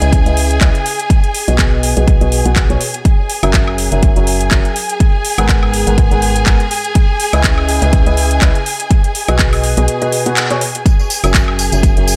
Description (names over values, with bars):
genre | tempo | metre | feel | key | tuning
piano house | 123 BPM | 4/4 | swing 56% on 16ths | F# mixolydian | A4 = 440 Hz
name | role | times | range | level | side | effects
rich studio string section | sustained chords | 0.0-12.2 s | G#4 to G#5 | -23 LUFS | equal | sidechain pumping
clear grand piano | riff | 0.0-12.2 s | G#2 to F#5 | -21 LUFS | equal | sidechain pumping, low-pass filter, dub echo
organ-like FM bass | bass | 0.0-12.2 s | F#1 to C#2 | -18 LUFS | equal | tube saturation, sidechain pumping
house drum kit | drums | 0.0-12.2 s | handclaps, hi-hat, tambourine, woodblock | -20 LUFS | equal | none
electronic kick drum | drums | 0.1-11.9 s | none | -14 LUFS | equal | none
room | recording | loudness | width
little or no reverb | none | -13 LUFS | mono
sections
0.0-10.9 A section; 10.9-12.2 A section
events
break 9.9-10.9; band accent 10.4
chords
0.0 C#m9; 1.1 B6; 3.1 F#7; 5.0 G#m9; 7.0 C#m9; 8.9 B6; 10.9 F#7